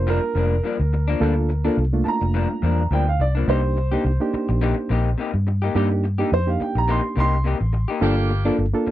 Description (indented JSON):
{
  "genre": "blues",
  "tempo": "106 BPM",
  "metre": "4/4",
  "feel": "swing 55% on 16ths",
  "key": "G minor",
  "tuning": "A4 = 440 Hz",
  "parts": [
    { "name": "dark upright piano", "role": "second line", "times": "0.0-8.3 s", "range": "Bb4 to C6", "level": "-27 LUFS", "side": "right 3 dB", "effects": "none" },
    { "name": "reed electric piano", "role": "accompaniment", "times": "0.0-8.9 s", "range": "A3 to Bb4", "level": "-24 LUFS", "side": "right 2 dB", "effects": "none" },
    { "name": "vintage muted fingered electric bass", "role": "bass", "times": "0.0-8.9 s", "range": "F1 to G2", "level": "-20 LUFS", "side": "equal", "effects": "none" },
    { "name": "electric guitar through a small old amp", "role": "stabs", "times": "0.1-8.9 s", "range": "G2 to G4", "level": "-27 LUFS", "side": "left 6 dB", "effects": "none" },
    { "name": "warm horn section", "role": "sustained chords", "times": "8.0-8.6 s", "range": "Bb3 to G4", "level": "-28 LUFS", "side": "right 3 dB", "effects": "none" }
  ],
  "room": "little or no reverb",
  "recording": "dry, close 1970s-style studio recording",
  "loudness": "-18 LUFS",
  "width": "side -14 dB against mid",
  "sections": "0.0-8.9 A section",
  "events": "upright piano solo 0.0-8.9",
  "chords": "0.0 Gm7; 3.5 Cm7; 8.0 Gm7"
}